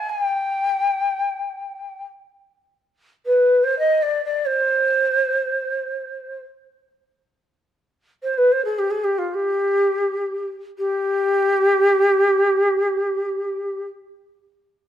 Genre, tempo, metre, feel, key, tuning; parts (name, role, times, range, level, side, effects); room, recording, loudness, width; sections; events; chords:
Arabic maqam ensemble; free time; G maqam hijaz; A4 = 442 Hz
breathy ney; solo; 0.0-13.8 s; F4 to Ab5+27c; -18 LUFS; equal
moderate recital hall reverb, RT60 1.4 s; close, detailed microphones; -18 LUFS; side -10 dB against mid
0.0-10.8 A section; 10.8-14.3 B section
slowing down 4.7-10.8